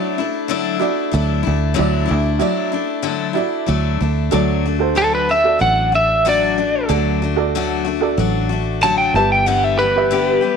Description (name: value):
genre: folk rock and heartland rock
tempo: 94 BPM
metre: 4/4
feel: straight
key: D major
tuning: A4 = 440 Hz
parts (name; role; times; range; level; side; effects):
- picked steel-string acoustic guitar; accompaniment; 0.0-10.6 s; G2 to G4; -20 LUFS; left 12 dB; none
- warm upright piano; accompaniment; 0.0-10.5 s; E4 to E5; -23 LUFS; right 13 dB; none
- fingered electric bass; bass; 1.1-10.4 s; G1 to D2; -20 LUFS; right 1 dB; none
- lightly driven lead guitar; melody; 5.0-10.6 s; A4 to A5; -15 LUFS; equal; none
room: moderate spring reverb, RT60 1.4 s, small room ambience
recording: 1960s-style stereo with parts hard left and right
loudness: -15 LUFS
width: side -6 dB against mid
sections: 0.0-4.3 A section; 4.3-10.6 B section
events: lead electric guitar solo 4.3-10.6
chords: 0.0 Dadd9; 4.3 D; 9.1 G6